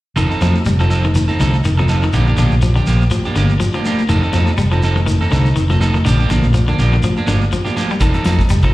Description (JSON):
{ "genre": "afrobeat", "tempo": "122 BPM", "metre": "4/4", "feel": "swing 56% on 16ths", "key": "F mixolydian", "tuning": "A4 = 445 Hz", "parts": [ { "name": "electric guitar at the edge of break-up", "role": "arpeggios", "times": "0.2-8.7 s", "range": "D3 to G3", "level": "-21 LUFS", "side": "left 3 dB", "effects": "slapback echo" }, { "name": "electric guitar at the edge of break-up", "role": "stabs", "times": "0.2-8.7 s", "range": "F3 to A4", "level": "-20 LUFS", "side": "right 3 dB", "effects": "tape echo, slapback echo" }, { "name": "fingered electric bass", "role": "bass", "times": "0.2-8.7 s", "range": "F1 to F2", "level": "-15 LUFS", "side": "equal", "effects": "none" }, { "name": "shekere", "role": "percussion", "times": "0.2-8.7 s", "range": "none", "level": "-23 LUFS", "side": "equal", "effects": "slapback echo" }, { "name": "congas", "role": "percussion", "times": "0.4-8.4 s", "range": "none", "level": "-25 LUFS", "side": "left 1 dB", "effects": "none" }, { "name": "damped 70s drum kit", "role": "drums", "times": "8.0-8.7 s", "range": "hi-hat, kick drum, snare drum", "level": "-15 LUFS", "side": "equal", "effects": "none" } ], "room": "light reverb", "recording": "live gig heard through the venue's PA, recital hall reverb", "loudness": "-12 LUFS", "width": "side -17 dB against mid", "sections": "0.2-8.7 A section", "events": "none", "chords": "0.2 F7; 2.1 Bb6; 4.1 F7; 6.1 Bb6; 8.0 F7", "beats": "| 0.17 0.66 1.15 1.64 | 2.13 2.62 3.12 3.61 | 4.10 4.59 5.08 5.57 | 6.06 6.55 7.04 7.53 | 8.02 8.51" }